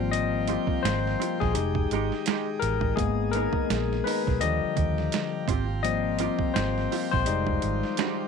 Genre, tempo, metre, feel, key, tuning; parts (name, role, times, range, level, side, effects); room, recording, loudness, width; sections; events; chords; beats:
R&B, neo-soul; 84 BPM; 4/4; swing 60% on 16ths; A4 = 440 Hz
barky tine electric piano; accompaniment; 0.0-8.3 s; D3 to Eb5; -27 LUFS; left 11 dB; overdrive
pipe organ, plenum; sustained chords; 0.0-8.3 s; D3 to G5; -36 LUFS; right 4 dB
vintage muted fingered electric bass; bass; 0.0-7.8 s; F1 to Eb2; -29 LUFS; right 2 dB
boom bap sampler-style drum kit; drums; 0.1-8.2 s; hi-hat, kick drum, snare drum; -30 LUFS; right 7 dB; overdrive
hollow-body jazz guitar; second line; 0.5-8.2 s; Ab3 to Bb4; -32 LUFS; right 17 dB
little or no reverb; 1960s-style stereo with parts hard left and right; -24 LUFS; side -6 dB against mid
0.0-8.3 A section
tine electric piano solo 0.0-8.3
0.0 Abmaj13; 1.5 Fm9; 3.0 Abmadd9; 4.4 Ebmaj7; 5.5 Abmaj13; 7.3 Fm9
| 0.12 0.83 1.54 2.26 | 2.97 3.69 4.40 5.12 | 5.83 6.54 7.26 7.97